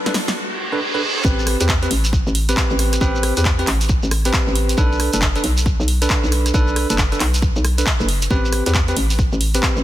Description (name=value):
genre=UK garage, two-step garage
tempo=136 BPM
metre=4/4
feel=swing 63% on 16ths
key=A dorian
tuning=A4 = 439 Hz
part: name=riser and reverse cymbal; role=sound effects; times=0.0-1.2 s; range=none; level=-24 LUFS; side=right 2 dB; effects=none
part: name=bell-like tine electric piano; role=stabs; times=0.1-9.8 s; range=C4 to B4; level=-23 LUFS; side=right 1 dB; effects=digital delay
part: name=punchy analog drum machine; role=drums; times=0.1-9.7 s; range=handclaps, hi-hat, rim click, snare drum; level=-23 LUFS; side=equal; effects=none
part: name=electronic kick drum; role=drums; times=0.3-9.7 s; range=none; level=-19 LUFS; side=equal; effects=high-pass filter on kick, high-pass filter on room
part: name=hollow knocking FM bass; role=bass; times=1.2-9.8 s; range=F#1 to E2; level=-19 LUFS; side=equal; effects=none
part: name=shekere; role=percussion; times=1.2-9.8 s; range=none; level=-29 LUFS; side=right 1 dB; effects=none
room=light reverb, digital ambience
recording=dense, heavily limited modern master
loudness=-15 LUFS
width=side -14 dB against mid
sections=0.0-1.2 A section; 1.2-9.8 B section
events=build-up 0.0-1.2; drum fill 0.0-0.4; riser 0.0-1.2; reverse cymbal 0.4-1.2; drop 1.2-9.8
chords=0.0 Bm7; 1.2 Am9; 4.8 Bm7; 8.3 Am9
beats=0.36 0.81 | 1.25 1.69 2.13 2.57 | 3.01 3.45 3.89 4.33 | 4.78 5.22 5.66 6.10 | 6.54 6.98 7.42 7.87 | 8.31 8.75 9.19 9.63